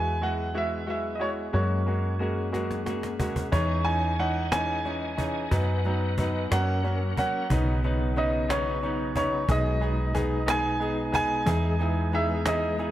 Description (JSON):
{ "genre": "six-eight pop ballad", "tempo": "60 BPM (dotted quarters)", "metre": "6/8", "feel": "straight", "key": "B major", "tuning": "A4 = 444 Hz", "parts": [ { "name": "clear concert grand piano", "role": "melody", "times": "0.0-12.9 s", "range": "C#5 to G#5", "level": "-30 LUFS", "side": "right 1 dB", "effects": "none" }, { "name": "clear concert grand piano", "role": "accompaniment", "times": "0.0-12.9 s", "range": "E3 to G#4", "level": "-31 LUFS", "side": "right 1 dB", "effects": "none" }, { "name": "direct-recorded clean electric guitar", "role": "arpeggios", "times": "0.0-12.9 s", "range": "B2 to B4", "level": "-37 LUFS", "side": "left 5 dB", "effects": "phaser, digital delay" }, { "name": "woody fretless electric bass", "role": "bass", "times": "0.0-12.9 s", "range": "B1 to F#2", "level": "-28 LUFS", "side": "equal", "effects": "none" }, { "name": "cajon", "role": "drums", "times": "2.5-12.9 s", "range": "none", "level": "-31 LUFS", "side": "equal", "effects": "none" }, { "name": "bright tonewheel organ", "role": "sustained chords", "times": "3.5-12.9 s", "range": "B2 to G#5", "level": "-34 LUFS", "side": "equal", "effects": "chorus vibrato, fast rotary speaker" } ], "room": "moderate echo chamber reverb, RT60 2.2 s", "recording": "dark, warm production", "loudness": "-24 LUFS", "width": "side -13 dB against mid", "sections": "0.0-7.5 A section; 7.5-12.9 B section", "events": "drum fill 2.5-3.5", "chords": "0.0 Eadd9; 1.5 F#add9; 3.5 C#madd9/E; 5.5 B/F#; 6.5 F#; 7.5 Badd9; 9.5 G#m/B; 11.5 Emaj7" }